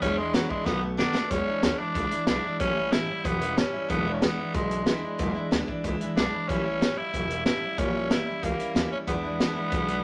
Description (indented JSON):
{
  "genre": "rockabilly",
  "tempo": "186 BPM",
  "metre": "4/4",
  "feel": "straight",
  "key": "E mixolydian",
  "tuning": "A4 = 442 Hz",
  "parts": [
    { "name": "raspy tenor saxophone", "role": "melody", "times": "0.0-10.0 s", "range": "F#3 to E4", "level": "-32 LUFS", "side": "equal", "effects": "none" },
    { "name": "picked steel-string acoustic guitar", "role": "accompaniment", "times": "0.0-10.0 s", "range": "E2 to F#4", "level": "-33 LUFS", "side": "equal", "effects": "none" },
    { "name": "upright bass", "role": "bass", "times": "0.0-10.0 s", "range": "E1 to E2", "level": "-36 LUFS", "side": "equal", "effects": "none" },
    { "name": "vintage drum kit", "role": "drums", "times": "0.0-10.0 s", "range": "hi-hat, kick drum, snare drum", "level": "-30 LUFS", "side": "equal", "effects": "none" }
  ],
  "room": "moderate studio reverb, RT60 0.6 s",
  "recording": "none",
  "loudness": "-27 LUFS",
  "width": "mono",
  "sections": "0.0-1.3 A section; 1.3-10.0 B section",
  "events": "tenor saxophone solo 0.0-1.3; drum fill 0.7-1.3",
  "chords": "0.0 E7; 0.7 B7; 1.3 E7; 2.6 A7; 3.9 E7; 6.5 A7; 7.8 A#dim7; 9.1 E7"
}